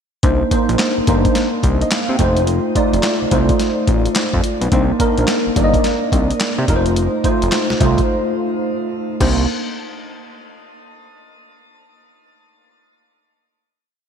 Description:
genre	R&B, new jack swing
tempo	107 BPM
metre	4/4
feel	swing 63% on 16ths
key	C dorian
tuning	A4 = 440 Hz
part	tine electric piano	accompaniment	0.2-9.5 s	A3 to G5	-18 LUFS	right 1 dB	ensemble chorus, shimmer reverb
part	fat analog bass	bass	0.2-9.5 s	F1 to C3	-18 LUFS	equal	none
part	boom bap sampler-style drum kit	drums	0.2-9.4 s	crash cymbal, handclaps, hi-hat, kick drum, snare drum	-19 LUFS	equal	none
room	moderate lush hall reverb, RT60 2.3 s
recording	bright 1980s-style digital production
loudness	-14 LUFS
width	side -7 dB against mid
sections	0.2-9.2 verse; 9.2-11.4 final chord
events	break 8.1-9.2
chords	0.2 Cm9; 2.2 F7; 4.7 Cm9; 6.7 F7; 9.2 Cm9

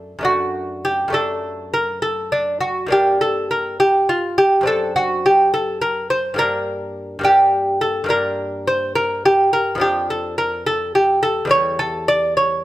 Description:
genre	classical, baroque-style dance for lute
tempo	69 BPM (dotted quarters)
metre	12/8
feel	rubato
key	G minor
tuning	A4 = 440 Hz
part	lute	solo	0.0-12.6 s	E2 to D5	-16 LUFS	equal	none
room	light reverb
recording	close, detailed microphones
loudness	-16 LUFS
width	side -15 dB against mid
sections	0.0-12.6 A section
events	none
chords	0.0 D/F#; 2.9 Gm; 4.7 D7/F#; 6.4 Gm; 9.8 Dm/F; 11.5 A5/E

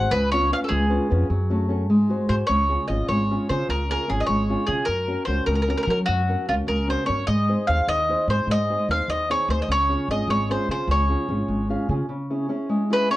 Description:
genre	italian folk, Italian serenade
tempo	100 BPM (dotted quarters)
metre	6/8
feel	straight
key	Db major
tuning	A4 = 441 Hz
part	mandolin	melody	0.0-13.2 s	F4 to F#5	-24 LUFS	equal	none
part	nylon-string guitar	accompaniment	0.0-13.2 s	C#3 to F5	-26 LUFS	equal	none
part	upright bass	bass	0.0-12.0 s	Ab1 to Gb3	-24 LUFS	equal	tube saturation
room	moderate small room reverb, RT60 0.5 s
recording	worn, warbling old tape, cassette tape, warbly pitch drift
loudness	-20 LUFS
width	side -16 dB against mid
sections	0.0-2.5 A section; 2.5-12.1 B section; 12.1-13.2 C section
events	nylon-string guitar fill 11.5-12.1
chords	0.1 C#7; 1.3 F#m; 1.9 G#7; 2.5 Db; 4.9 Gb; 7.3 Ab; 9.7 Db; 12.1 C#m

